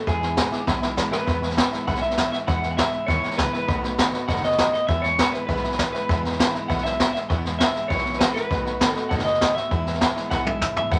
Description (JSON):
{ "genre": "rockabilly", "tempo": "199 BPM", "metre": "4/4", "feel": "straight", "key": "E major", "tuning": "A4 = 441 Hz", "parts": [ { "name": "electric guitar through a small old amp", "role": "melody", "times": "0.0-11.0 s", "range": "G#4 to F#5", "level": "-28 LUFS", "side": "equal", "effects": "none" }, { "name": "picked steel-string acoustic guitar", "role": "accompaniment", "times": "0.0-11.0 s", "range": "E2 to F#4", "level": "-34 LUFS", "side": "equal", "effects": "none" }, { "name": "honky-tonk upright piano", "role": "accompaniment", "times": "0.1-11.0 s", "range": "D#5 to D6", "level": "-35 LUFS", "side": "equal", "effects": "none" }, { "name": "upright bass", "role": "bass", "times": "0.1-11.0 s", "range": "F#1 to E2", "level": "-32 LUFS", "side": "equal", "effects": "none" }, { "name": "jazz brush drum kit", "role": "drums", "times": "0.1-11.0 s", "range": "hi-hat, kick drum, snare drum, toms", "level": "-25 LUFS", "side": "equal", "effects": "none" } ], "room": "moderate studio reverb, RT60 0.5 s", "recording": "none", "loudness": "-23 LUFS", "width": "mono", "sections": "0.0-1.3 A section; 1.3-10.9 B section", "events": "drum fill 0.7-1.3, 10.3-10.9", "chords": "0.1 E; 3.7 B7; 4.9 E; 8.5 B7; 9.7 E" }